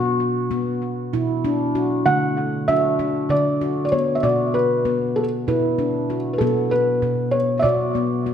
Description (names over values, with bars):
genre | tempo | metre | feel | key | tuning
world meditative, meditative tuned percussion | 194 BPM (eighths) | 7/8 | straight | B minor | A4 = 435 Hz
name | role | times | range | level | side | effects
handpan | arpeggios | 0.0-8.3 s | B2 to F#4 | -21 LUFS | left 1 dB | tape echo
felt-muted upright piano | melody | 2.1-8.3 s | A4 to F#5 | -20 LUFS | equal | tape echo
room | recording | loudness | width
wet echo chamber reverb, RT60 1.4 s | none | -18 LUFS | side -8 dB against mid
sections
0.0-6.4 A section; 6.4-8.3 B section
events
none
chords
0.0 Bm; 2.1 D; 4.2 Bm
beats
0.21 0.52 0.83 1.14 1.46 1.76 | 2.08 2.39 2.70 3.01 3.32 3.63 3.94 | 4.25 4.56 4.87 5.17 5.48 5.79 6.10 | 6.41 6.72 7.03 7.34 7.65 7.96 8.26